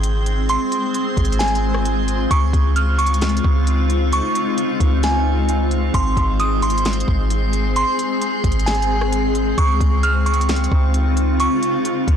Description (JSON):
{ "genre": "hip hop, atmospheric cloud-rap", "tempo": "132 BPM", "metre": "4/4", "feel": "half-time", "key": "Ab major", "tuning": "A4 = 440 Hz", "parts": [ { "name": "granular cloud pad", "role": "sustained chords", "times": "0.0-12.2 s", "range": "Db3 to G5", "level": "-22 LUFS", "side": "left 2 dB", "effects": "built-in reverb, sidechain pumping" }, { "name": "soft 808-style bass", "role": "bass", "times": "0.0-12.2 s", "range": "Ab1 to Db2", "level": "-19 LUFS", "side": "equal", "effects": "none" }, { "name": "smooth R&B drum kit", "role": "drums", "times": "0.0-12.2 s", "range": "hi-hat, kick drum, rim click, snare drum", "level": "-22 LUFS", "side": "equal", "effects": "soft clipping on snare" }, { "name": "drifting glass-harmonics texture", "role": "texture", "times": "0.0-12.2 s", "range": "C4 to G6", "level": "-29 LUFS", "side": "right 1 dB", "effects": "chorus, built-in reverb" }, { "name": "glassy synth bell", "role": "melody", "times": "0.5-11.8 s", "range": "Ab5 to F6", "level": "-23 LUFS", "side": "right 2 dB", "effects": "chorus, tape echo" } ], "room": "digital ambience", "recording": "blown-out, overdriven recording, overdrive", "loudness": "-16 LUFS", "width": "side -8 dB against mid", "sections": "0.0-12.2 A section", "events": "none", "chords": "0.0 Abmaj7; 2.3 Dbmaj7; 5.9 Abmaj7; 9.6 Dbmaj7" }